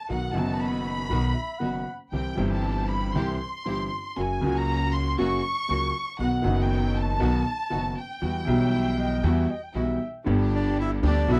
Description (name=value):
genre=tango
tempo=118 BPM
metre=4/4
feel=rubato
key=E harmonic minor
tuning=A4 = 440 Hz
part: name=rich chamber violin section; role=second line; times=0.0-10.0 s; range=F#5 to C#6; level=-34 LUFS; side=equal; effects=none
part: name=clear upright piano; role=accompaniment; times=0.1-11.4 s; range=F#1 to G4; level=-29 LUFS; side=equal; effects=none
part: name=clear studio string section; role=stabs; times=0.1-11.4 s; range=F#3 to G4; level=-38 LUFS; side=equal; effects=none
part: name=upright bass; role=bass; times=0.1-11.4 s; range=F#1 to E2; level=-30 LUFS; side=equal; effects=none
part: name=dark clarinet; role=second line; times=1.1-2.0, 8.5-10.2 s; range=D#5 to F#5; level=-38 LUFS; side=equal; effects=none
part: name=bandoneon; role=melody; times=10.6-11.4 s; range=B3 to E4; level=-31 LUFS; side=equal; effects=none
room=little or no reverb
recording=dry, close 1970s-style studio recording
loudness=-26 LUFS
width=mono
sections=0.0-10.3 A section; 10.3-11.4 B section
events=violin section solo 0.0-10.3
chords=0.1 B; 2.1 C; 4.2 F#; 6.2 B; 8.2 Emadd9; 10.3 G